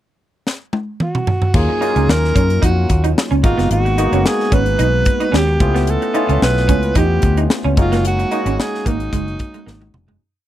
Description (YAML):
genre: polished 1980s jazz-funk pop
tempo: 111 BPM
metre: 4/4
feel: swing 54% on 16ths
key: unclear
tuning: A4 = 441 Hz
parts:
  - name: crisp fusion drum kit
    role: drums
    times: 0.5-10.2 s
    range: crash cymbal, hi-hat, kick drum, snare drum, toms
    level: -18 LUFS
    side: equal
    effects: none
  - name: breathy alto saxophone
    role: melody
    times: 1.0-10.0 s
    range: Eb4 to Cb5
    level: -20 LUFS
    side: right 2 dB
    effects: none
  - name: barky tine electric piano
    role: accompaniment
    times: 1.5-10.2 s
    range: Gb3 to Gb4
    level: -21 LUFS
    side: left 2 dB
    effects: overdrive, wide subtle chorus
  - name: vintage muted fingered electric bass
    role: bass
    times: 1.5-10.2 s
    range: F1 to Gb2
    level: -17 LUFS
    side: equal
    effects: none
  - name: electric guitar at the edge of break-up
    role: riff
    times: 1.7-10.2 s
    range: Ab3 to Eb4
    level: -22 LUFS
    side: right 5 dB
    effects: ensemble chorus
room: little or no reverb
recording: dry, close 1970s-style studio recording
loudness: -14 LUFS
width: side -12 dB against mid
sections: 0.0-1.5 pickup bar; 1.5-10.2 verse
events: drum fill 0.5-1.5, 9.7-10.2; fade-out 8.0-10.2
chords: 0.0 N.C.; 1.5 Ebm7; 3.4 Abm7; 5.6 Db7alt; 7.8 Gb69